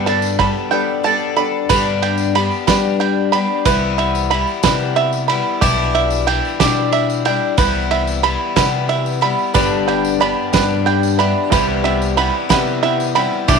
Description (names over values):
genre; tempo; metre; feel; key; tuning
indie folk with a building arrangement; 61 BPM (dotted quarters); 6/8; straight; unclear; A4 = 440 Hz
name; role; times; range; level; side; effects
felt-muted upright piano; accompaniment; 0.0-1.7, 9.5-13.6 s; G1 to F#5; -23 LUFS; right 12 dB; none
picked twelve-string acoustic guitar; accompaniment; 0.0-13.6 s; G2 to A4; -19 LUFS; left 15 dB; none
bluegrass banjo; arpeggios; 0.0-13.6 s; G4 to B5; -18 LUFS; right 9 dB; none
upright bass; bass; 0.0-13.6 s; G1 to G3; -22 LUFS; left 1 dB; none
loose indie drum kit; drums; 0.1-13.6 s; kick drum, ride cymbal, snare drum; -22 LUFS; right 3 dB; none
tambourine; percussion; 0.2-13.6 s; none; -30 LUFS; left 15 dB; none
room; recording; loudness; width
light reverb, small room ambience; 1960s-style stereo with parts hard left and right; -14 LUFS; side -5 dB against mid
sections
0.0-1.7 A section; 1.7-13.6 B section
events
none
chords
0.0 Gadd9; 1.7 G; 3.7 Cmaj7; 5.6 Em7/B; 7.6 Cmaj7; 9.5 G; 11.5 Cmaj7